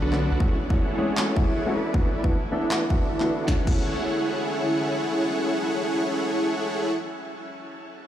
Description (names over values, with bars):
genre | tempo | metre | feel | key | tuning
future bass | 156 BPM | 4/4 | swing 56% on 16ths, half-time | F# minor | A4 = 439 Hz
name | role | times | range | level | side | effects
shimmering ambient pad | sustained chords | 0.0-6.7 s | F#3 to G#5 | -33 LUFS | equal | chorus, built-in reverb, sidechain pumping
dense compressed supersaw | riff | 0.0-6.9 s | D4 to B5 | -26 LUFS | equal | sidechain pumping, low-pass filter, ping-pong delay
warm concert grand piano | accompaniment | 0.1-6.9 s | D3 to A4 | -30 LUFS | left 1 dB | sidechain pumping, ping-pong delay
trap drum kit | drums | 0.1-3.8 s | crash cymbal, handclaps, snare drum | -35 LUFS | equal | none
electronic kick drum | drums | 0.4-3.8 s | none | -23 LUFS | equal | none
room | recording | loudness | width
light reverb | played on a big sound system in a bare room, large studio reverb | -22 LUFS | side -11 dB against mid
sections
0.0-3.5 A section; 3.5-6.6 B section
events
filter sweep on supersaw synth 0.0-3.5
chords
0.4 F#m9; 1.9 D69; 3.5 F#m9